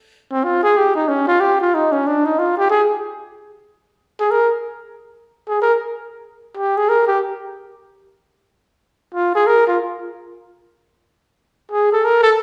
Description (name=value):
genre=jazz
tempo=186 BPM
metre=4/4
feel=swing 61% on 8ths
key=unclear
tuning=A4 = 442 Hz
part: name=breathy trumpet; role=solo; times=0.3-12.3 s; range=C4 to Bb4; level=-17 LUFS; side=equal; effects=none
room=wet recital hall reverb, RT60 1.3 s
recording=recorded in a church or concert hall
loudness=-17 LUFS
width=mono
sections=0.0-12.4 A section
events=none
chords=none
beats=0.11 0.43 | 0.76 1.08 1.41 1.73 | 2.05 2.37 2.70 3.02 | 3.34 3.66 3.99 4.31 | 4.63 4.95 5.28 5.60 | 5.92 6.24 6.56 6.88 | 7.21 7.53 7.85 8.17 | 8.49 8.81 9.13 9.45 | 9.78 10.10 10.42 10.74 | 11.06 11.38 11.70 12.02